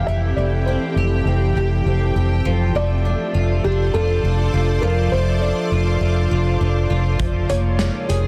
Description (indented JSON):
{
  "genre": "dream pop",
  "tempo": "101 BPM",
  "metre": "4/4",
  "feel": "straight",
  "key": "F major",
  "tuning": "A4 = 440 Hz",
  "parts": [
    { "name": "felt-muted upright piano", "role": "melody", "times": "0.0-8.3 s", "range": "G4 to E5", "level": "-28 LUFS", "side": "equal", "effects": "digital delay" },
    { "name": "shimmering ambient pad", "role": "sustained chords", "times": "0.0-8.3 s", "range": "E3 to D5", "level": "-29 LUFS", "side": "equal", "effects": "chorus, built-in reverb" },
    { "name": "fingerpicked twelve-string acoustic guitar", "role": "arpeggios", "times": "0.0-8.3 s", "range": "E3 to Ab4", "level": "-27 LUFS", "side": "equal", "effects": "lush chorus, digital delay" },
    { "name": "vintage muted fingered electric bass", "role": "bass", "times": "0.0-8.3 s", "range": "F1", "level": "-21 LUFS", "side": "equal", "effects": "none" },
    { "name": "vintage drum kit", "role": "drums", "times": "7.2-8.2 s", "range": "hi-hat, kick drum, snare drum", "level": "-27 LUFS", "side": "equal", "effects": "none" }
  ],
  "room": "light reverb, studio ambience",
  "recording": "dense, heavily limited modern master",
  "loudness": "-19 LUFS",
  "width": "mono",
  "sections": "0.0-8.3 A section",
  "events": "none",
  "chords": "0.0 Fmaj9; 2.4 F6; 7.2 Db6/F"
}